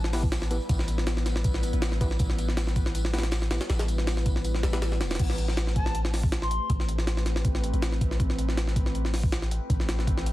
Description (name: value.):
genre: drum and bass, jungle.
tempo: 160 BPM.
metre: 4/4.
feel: straight.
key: A minor.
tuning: A4 = 440 Hz.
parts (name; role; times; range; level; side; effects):
long sustained 808-style bass; bass; 0.0-10.3 s; E1 to A1; -27 LUFS; equal; none.
jungle sampler-style drum kit; drums; 0.0-10.3 s; crash cymbal, hi-hat, kick drum, snare drum; -28 LUFS; equal; none.
overdriven tine electric piano; stabs; 0.1-4.8 s; B3 to B4; -39 LUFS; equal; dub echo.
crunchy breakbeat drum kit; drums; 0.1-5.1 s; hi-hat, snare drum, tambourine; -45 LUFS; right 1 dB; none.
warbly tape-like pad; sustained chords; 0.3-10.3 s; G3 to B4; -36 LUFS; left 1 dB; chorus, built-in reverb, vintage 12-bit sampler grit.
mellow hollow silver concert flute; melody; 5.8-6.7 s; A5 to C6; -36 LUFS; left 3 dB; dub echo.
room: small room ambience.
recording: dense, heavily limited modern master, vinyl crackle.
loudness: -24 LUFS.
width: side -16 dB against mid.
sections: 0.0-5.2 A section; 5.2-10.3 A section.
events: drop 0.0-5.2, 5.2-10.3.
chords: 0.0 Em/A; 5.2 Am9.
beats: 0.32 | 0.70 1.07 1.45 1.82 | 2.20 2.57 2.95 3.32 | 3.70 4.07 4.45 4.82 | 5.20 5.57 5.95 6.32 | 6.70 7.07 7.45 7.82 | 8.20 8.57 8.95 9.32 | 9.70 10.07.